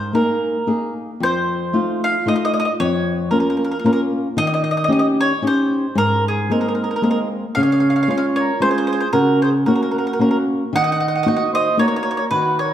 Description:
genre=italian folk, Italian serenade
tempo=113 BPM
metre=3/4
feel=swing 55% on 8ths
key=unclear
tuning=A4 = 440 Hz
part: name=mandolin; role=melody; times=0.0-12.7 s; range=Ab4 to Gb5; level=-20 LUFS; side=right 1 dB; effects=none
part: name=flamenco guitar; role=accompaniment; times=0.0-12.7 s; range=F2 to Ab4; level=-18 LUFS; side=left 1 dB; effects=none
part: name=mellow accordion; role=second line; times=6.5-12.7 s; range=Eb4 to Eb5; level=-24 LUFS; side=right 7 dB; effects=none
room=wet recital hall reverb, RT60 1.6 s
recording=dark, warm production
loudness=-16 LUFS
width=side -10 dB against mid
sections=0.0-12.7 A section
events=none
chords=0.0 Absus2; 1.2 F7; 2.8 Bbm/F; 4.4 Eb7; 6.0 Abadd9; 7.6 Db; 9.1 Gb/Db; 10.7 Ebm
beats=0.13 0.66 | 1.20 1.73 2.26 | 2.79 3.32 3.84 | 4.37 4.90 5.43 | 5.96 6.49 7.02 | 7.55 8.09 8.62 | 9.14 9.67 10.20 | 10.73 11.25 11.78 | 12.31

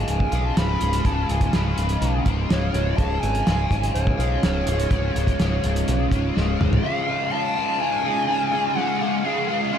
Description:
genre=psychedelic rock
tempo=124 BPM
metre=4/4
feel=straight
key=C# major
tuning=A4 = 439 Hz
part: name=bright silver concert flute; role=melody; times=0.0-9.8 s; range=C#5 to B5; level=-26 LUFS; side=equal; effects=diffuse ambient delay
part: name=biting overdriven guitar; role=riff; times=0.0-9.8 s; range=C#2 to E#4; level=-25 LUFS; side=left 1 dB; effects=flanger
part: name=picked electric bass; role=bass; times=0.0-6.8 s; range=C#1 to B1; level=-23 LUFS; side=equal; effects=none
part: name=cloth-damped thuddy drum kit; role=drums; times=0.1-6.8 s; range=hi-hat, kick drum, snare drum, toms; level=-25 LUFS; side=equal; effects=none
room=moderate cathedral reverb, RT60 5.7 s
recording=dreamy mix soaked in reverb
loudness=-19 LUFS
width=side -8 dB against mid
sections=0.0-6.8 A section; 6.8-9.8 B section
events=drum fill 6.4-6.8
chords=0.0 C#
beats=0.09 0.57 | 1.05 1.54 2.02 2.50 | 2.98 3.47 3.95 4.43 | 4.91 5.40 5.88 6.36 | 6.84 7.32 7.80 8.28 | 8.76 9.24 9.72

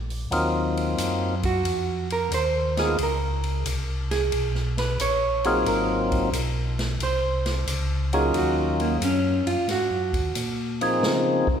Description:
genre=soul jazz organ trio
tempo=90 BPM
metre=4/4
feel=swing 68% on 8ths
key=Ab mixolydian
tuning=A4 = 439 Hz
part: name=mellow tonewheel organ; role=bass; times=0.0-11.4 s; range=Ab1 to Db3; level=-27 LUFS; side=equal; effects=slow rotary speaker
part: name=open jazz drum kit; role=drums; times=0.1-11.6 s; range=hi-hat, kick drum, ride cymbal, snare drum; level=-31 LUFS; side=left 1 dB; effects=none
part: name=percussive tonewheel organ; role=melody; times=0.3-11.5 s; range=F3 to Ab4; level=-24 LUFS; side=left 1 dB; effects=slow rotary speaker
part: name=vintage hollow-body jazz guitar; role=accompaniment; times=1.5-10.9 s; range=Bb3 to Db5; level=-26 LUFS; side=right 3 dB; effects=none
room=wet scoring stage reverb, RT60 1.9 s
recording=recorded in a church or concert hall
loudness=-22 LUFS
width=side -8 dB against mid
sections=0.3-11.6 A section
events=hollow-body jazz guitar solo 0.3-11.6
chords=0.3 Ab13 (rootless); 3.0 Db7(no3); 5.7 Ab13; 8.3 Ebm7; 9.7 Ab13; 11.0 Db69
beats=| 0.32 0.99 1.66 2.32 | 2.99 3.66 4.33 5.00 | 5.67 6.34 7.01 7.67 | 8.34 9.01 9.68 10.35 | 11.02

